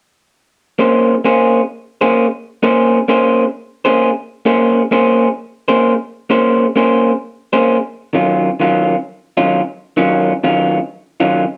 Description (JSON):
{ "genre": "blues", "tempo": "131 BPM", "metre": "4/4", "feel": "swing 68% on 8ths", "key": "Bb minor", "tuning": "A4 = 439 Hz", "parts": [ { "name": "electric guitar through a small old amp", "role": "solo", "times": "0.8-11.4 s", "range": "Eb3 to C5", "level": "-14 LUFS", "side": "equal", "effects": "none" } ], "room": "moderate studio reverb, RT60 0.6 s", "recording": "band playing live in one room", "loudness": "-15 LUFS", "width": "mono", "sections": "0.8-11.6 A section", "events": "none", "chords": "0.8 Bbm9; 8.1 Ebm9" }